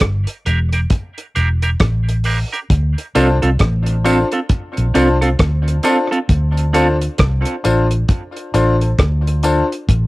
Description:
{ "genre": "dub reggae", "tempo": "67 BPM", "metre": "4/4", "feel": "swing 61% on 16ths", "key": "D minor", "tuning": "A4 = 445 Hz", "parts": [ { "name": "vintage muted fingered electric bass", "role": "bass", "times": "0.0-10.1 s", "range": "E1 to D2", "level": "-16 LUFS", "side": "equal", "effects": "transformer saturation" }, { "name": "damped 70s drum kit", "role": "drums", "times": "0.0-10.1 s", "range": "hi-hat, kick drum, rim click", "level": "-17 LUFS", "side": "equal", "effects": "cassette tape" }, { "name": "electric guitar at the edge of break-up", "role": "accompaniment", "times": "0.5-6.9 s", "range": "C4 to Bb4", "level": "-19 LUFS", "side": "right 2 dB", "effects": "high-pass filter, cassette tape, tape echo" }, { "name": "bright concert grand piano", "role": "stabs", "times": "3.1-9.6 s", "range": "D4 to C5", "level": "-19 LUFS", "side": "left 2 dB", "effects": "cassette tape, tape echo" }, { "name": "tambourine", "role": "percussion", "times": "3.2-9.7 s", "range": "none", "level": "-34 LUFS", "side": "right 4 dB", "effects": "high-pass filter on perc" } ], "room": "moderate booth ambience, RT60 0.2 s", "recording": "home recording on cassette", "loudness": "-14 LUFS", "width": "side -20 dB against mid", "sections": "0.0-10.1 A section", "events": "break 0.0-2.7", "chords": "0.0 Em7b5; 2.7 Dm7" }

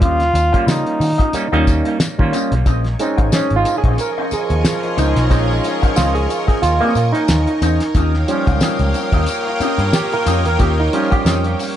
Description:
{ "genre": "funk", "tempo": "91 BPM", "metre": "4/4", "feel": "swing 56% on 16ths", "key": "Bb dorian", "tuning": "A4 = 440 Hz", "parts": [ { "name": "bright trombone", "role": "melody", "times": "0.0-2.0 s", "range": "Eb4 to F4", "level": "-19 LUFS", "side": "equal", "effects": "plate reverb" }, { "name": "electric guitar with an envelope filter", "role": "accompaniment", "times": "0.0-11.6 s", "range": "Db4 to F5", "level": "-24 LUFS", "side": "left 4 dB", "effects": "none" }, { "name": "clav", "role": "stabs", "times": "0.0-11.8 s", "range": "F3 to Bb4", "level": "-20 LUFS", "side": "right 3 dB", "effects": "auto-wah, tape echo" }, { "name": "vintage muted picked electric bass", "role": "bass", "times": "0.0-11.5 s", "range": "Ab1 to Eb3", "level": "-18 LUFS", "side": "equal", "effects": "none" }, { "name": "cloth-damped thuddy drum kit", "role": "drums", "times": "0.0-11.8 s", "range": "hi-hat, kick drum, snare drum", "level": "-18 LUFS", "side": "equal", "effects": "none" }, { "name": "tambourine", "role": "percussion", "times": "0.4-11.8 s", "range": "none", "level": "-32 LUFS", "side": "left 7 dB", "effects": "none" }, { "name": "string machine, violins", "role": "sustained chords", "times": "2.7-11.8 s", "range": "Bb4 to Eb6", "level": "-26 LUFS", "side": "equal", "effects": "ensemble chorus" }, { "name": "warm horn section", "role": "second line", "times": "4.0-11.8 s", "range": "F3 to Bb4", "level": "-24 LUFS", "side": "left 1 dB", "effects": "none" } ], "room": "moderate small room reverb, RT60 0.5 s", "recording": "nothing above 11.0 kHz", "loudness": "-14 LUFS", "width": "side -11 dB against mid", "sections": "0.0-2.7 A section; 2.7-11.8 B section", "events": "clav solo 2.7-11.8", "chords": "0.0 Eb9; 2.7 Bbm11; 8.0 Eb9" }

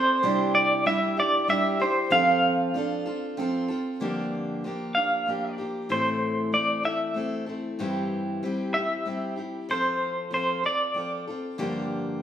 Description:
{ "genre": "folk", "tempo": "95 BPM", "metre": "3/4", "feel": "straight", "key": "G dorian", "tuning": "A4 = 440 Hz", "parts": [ { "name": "clean electric guitar", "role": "melody", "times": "0.0-11.2 s", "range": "C5 to F5", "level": "-24 LUFS", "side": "right 1 dB", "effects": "tremolo" }, { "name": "picked steel-string acoustic guitar", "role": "accompaniment", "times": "0.0-12.2 s", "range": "G2 to A4", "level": "-29 LUFS", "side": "left 2 dB", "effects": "none" }, { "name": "clear upright piano", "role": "arpeggios", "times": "0.0-4.0 s", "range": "C4 to E4", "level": "-30 LUFS", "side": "right 6 dB", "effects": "none" } ], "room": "wet large studio reverb, RT60 1.3 s", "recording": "band playing live in one room", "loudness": "-24 LUFS", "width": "side -10 dB against mid", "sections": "0.0-4.0 A section; 4.0-12.2 B section", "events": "none", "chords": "0.2 Cadd9; 2.1 F; 4.0 Gm7; 5.9 Am; 7.8 C/G; 9.7 F; 11.6 Gm7" }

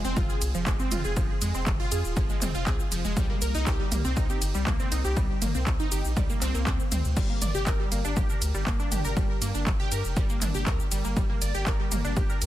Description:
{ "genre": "melodic techno", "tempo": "120 BPM", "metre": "4/4", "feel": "straight", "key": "G phrygian", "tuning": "A4 = 439 Hz", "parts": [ { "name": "wide unison pluck", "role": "arpeggios", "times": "0.0-12.4 s", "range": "F3 to D5", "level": "-31 LUFS", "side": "equal", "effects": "phaser, sidechain pumping, digital delay" }, { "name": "round analog bass", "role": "bass", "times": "0.0-12.5 s", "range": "Eb1 to G2", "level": "-30 LUFS", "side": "equal", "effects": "sidechain pumping" }, { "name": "techno drum kit", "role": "drums", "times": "0.0-12.5 s", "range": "crash cymbal, handclaps, hi-hat, ride cymbal, shaker, toms", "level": "-32 LUFS", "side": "right 1 dB", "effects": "none" }, { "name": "electronic kick drum", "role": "drums", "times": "0.2-12.3 s", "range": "none", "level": "-27 LUFS", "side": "equal", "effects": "none" } ], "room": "little or no reverb", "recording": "dense, heavily limited modern master", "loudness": "-24 LUFS", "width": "side -14 dB against mid", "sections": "0.0-12.5 A section", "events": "none", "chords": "0.0 Fm; 3.2 C7(no3); 7.2 Gm" }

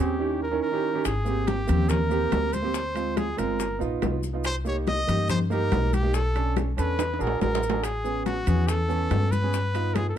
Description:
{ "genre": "Afro-Cuban jazz", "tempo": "142 BPM", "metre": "4/4", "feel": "straight", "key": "unclear", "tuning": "A4 = 439 Hz", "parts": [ { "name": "bright trumpet", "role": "melody", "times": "0.0-10.2 s", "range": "Gb4 to Eb5", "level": "-29 LUFS", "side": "equal", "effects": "none" }, { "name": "warm concert grand piano", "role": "accompaniment", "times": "0.0-10.2 s", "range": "Eb3 to Bb4", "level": "-30 LUFS", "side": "right 4 dB", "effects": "none" }, { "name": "upright bass", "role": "bass", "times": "0.0-10.1 s", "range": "G1 to G2", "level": "-27 LUFS", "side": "left 1 dB", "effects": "none" }, { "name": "bongos", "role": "percussion", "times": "1.1-10.2 s", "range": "none", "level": "-36 LUFS", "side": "left 7 dB", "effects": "none" }, { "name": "congas", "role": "percussion", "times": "1.1-10.2 s", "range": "none", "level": "-32 LUFS", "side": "left 3 dB", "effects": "none" }, { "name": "maracas", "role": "percussion", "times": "1.1-10.2 s", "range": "none", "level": "-43 LUFS", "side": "left 8 dB", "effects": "none" }, { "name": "timbales", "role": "percussion", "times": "1.1-10.2 s", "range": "none", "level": "-34 LUFS", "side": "right 7 dB", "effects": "none" } ], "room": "light reverb", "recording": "dark, warm production", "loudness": "-23 LUFS", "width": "side -10 dB against mid", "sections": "0.0-1.1 A section; 1.1-10.2 B section", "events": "drum fill 7.0-7.8", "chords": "0.2 Eb7b9; 1.1 Abmaj9; 2.8 Dm7b5; 3.6 G7alt; 4.4 Cm7; 6.1 Bm9; 7.0 E7; 7.8 Amaj7; 9.5 G7b13" }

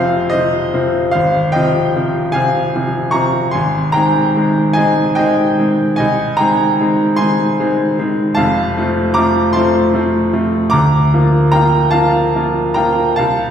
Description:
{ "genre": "classical, romantic nocturne for solo piano", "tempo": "50 BPM (dotted quarters)", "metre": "6/8", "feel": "rubato", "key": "unclear", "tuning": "A4 = 440 Hz", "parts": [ { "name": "bright baby grand piano", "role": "solo", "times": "0.0-13.5 s", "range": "F1 to D6", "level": "-12 LUFS", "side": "equal", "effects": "none" } ], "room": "wet recital hall reverb, RT60 1.7 s", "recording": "heard from further back in the room", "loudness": "-12 LUFS", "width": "side -8 dB against mid", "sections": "0.0-13.5 A section", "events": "none", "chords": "0.0 F5; 1.2 Fm/Ab; 3.6 Ab; 6.0 Ab/C; 8.4 F; 10.7 Bb/D" }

